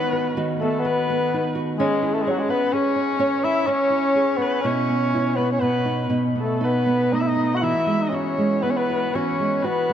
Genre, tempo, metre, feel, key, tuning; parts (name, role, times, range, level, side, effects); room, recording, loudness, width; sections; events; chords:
celtic folk, Celtic slow air; 58-64 BPM; 3/4; rubato; A4 = 440 Hz
warm tenor saxophone; melody; 0.0-9.9 s; F#3 to F#4; -23 LUFS; left 4 dB; slapback echo
dark viola; second line; 0.0-9.9 s; F#4 to F#5; -27 LUFS; right 3 dB
nylon-string guitar; accompaniment; 0.0-9.9 s; B2 to C#5; -23 LUFS; right 3 dB
moderate cathedral reverb, RT60 6.7 s; -19 LUFS; side -9 dB against mid
0.0-9.9 A section
0.0 B/D#; 1.8 C#m; 4.6 Bsus4; 5.6 B7; 7.6 Eadd9